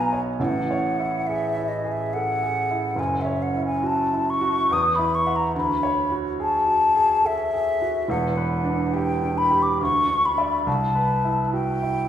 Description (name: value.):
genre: classical, impressionist duo for flute and grand piano.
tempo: 70 BPM.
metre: 3/4.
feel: rubato.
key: unclear.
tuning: A4 = 440 Hz.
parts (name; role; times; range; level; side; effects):
mellow hollow concert flute; melody; 0.0-12.1 s; D#5 to D#6; -22 LUFS; left 2 dB; none.
warm grand piano; accompaniment; 0.0-12.1 s; E1 to F#5; -25 LUFS; right 2 dB; none.
room: wet recital hall reverb, RT60 1.3 s.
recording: heard from further back in the room.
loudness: -20 LUFS.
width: side -10 dB against mid.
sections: 0.0-12.1 A section.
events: none.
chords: 0.4 Amaj7; 3.0 F#5; 4.7 Esus2; 5.5 Dmaj7#11; 8.1 Em7; 9.8 Dsus2; 10.7 Cmaj7#11.